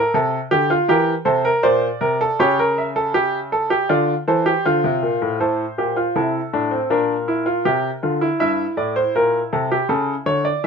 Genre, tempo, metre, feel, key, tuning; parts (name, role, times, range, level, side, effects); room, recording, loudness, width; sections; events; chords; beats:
classical, baroque-style 3-part fugue for grand piano; 80 BPM; 4/4; straight; A4 = 440 Hz
clear baby grand piano; solo; 0.0-10.7 s; G2 to E5; -17 LUFS; equal
light reverb; minimal, uncompressed stereo recording; -17 LUFS; side -6 dB against mid
0.0-5.4 A section; 5.4-10.7 B section
0.0 Dm; 0.9 Edim; 2.4 A7/C#; 3.9 F; 6.9 Bb; 8.4 Edim/G; 9.9 A/C#
0.14 0.90 1.65 | 2.40 3.15 3.90 4.65 | 5.40 6.16 6.90 7.65 | 8.41 9.16 9.90 10.65